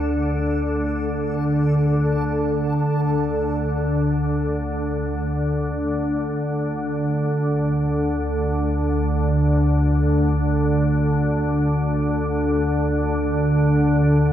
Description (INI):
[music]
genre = dark ambient drone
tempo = free time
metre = none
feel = none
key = unclear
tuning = A4 = 439 Hz
[part]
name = organ-like drone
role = drone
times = 0.0-14.3 s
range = D2 to D3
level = -19 LUFS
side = equal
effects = ensemble chorus, built-in reverb
[part]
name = backwards swelling texture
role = texture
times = 0.0-2.3 s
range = A4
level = -30 LUFS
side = equal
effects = built-in reverb
[sound]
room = wet huge ambient reverb, RT60 7.0 s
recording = none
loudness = -19 LUFS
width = side -10 dB against mid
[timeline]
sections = 0.0-2.2 A section; 2.2-14.3 B section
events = filter sweep on synth drone 2.2-14.3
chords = 0.0 D5; 2.2 N.C.